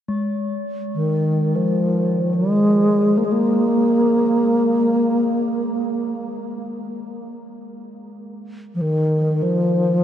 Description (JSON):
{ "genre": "world meditative, free-time meditation music", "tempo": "free time", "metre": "none", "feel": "none", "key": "unclear", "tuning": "A4 = 440 Hz", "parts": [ { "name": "bronze singing bowl", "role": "texture", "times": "0.1-9.1 s", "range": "Ab3", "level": "-29 LUFS", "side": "left 2 dB", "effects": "none" }, { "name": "bass flute", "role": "melody", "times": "0.9-10.0 s", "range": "Eb3 to Bb3", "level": "-17 LUFS", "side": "equal", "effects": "tape echo" } ], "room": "wet huge ambient reverb, RT60 8.3 s", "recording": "dreamy mix soaked in reverb, cassette tape", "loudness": "-17 LUFS", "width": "side -10 dB against mid", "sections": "0.0-10.0 A section", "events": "none", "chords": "none", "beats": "free time" }